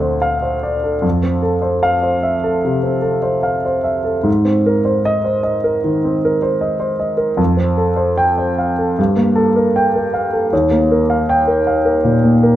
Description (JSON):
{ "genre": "classical, impressionist solo piano", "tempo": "76 BPM", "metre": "4/4", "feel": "uneven beats, rubato", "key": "F mixolydian", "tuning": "A4 = 444 Hz", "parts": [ { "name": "warm grand piano", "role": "solo", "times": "0.0-12.6 s", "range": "D2 to G5", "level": "-14 LUFS", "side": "equal", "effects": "none" } ], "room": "moderate recital hall reverb, RT60 1.9 s", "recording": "none", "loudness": "-14 LUFS", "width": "side -13 dB against mid", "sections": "0.0-12.6 A section", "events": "none", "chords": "0.0 Dm7; 1.0 Fmaj7; 4.3 Abadd9; 7.4 Fadd9; 9.0 Gm9; 10.5 Ebadd9", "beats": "0.23 | 1.04 1.84 2.65 3.46 | 4.27 5.07 5.85 6.62 | 7.39 8.19 8.98 9.76 | 10.52 11.28 12.03" }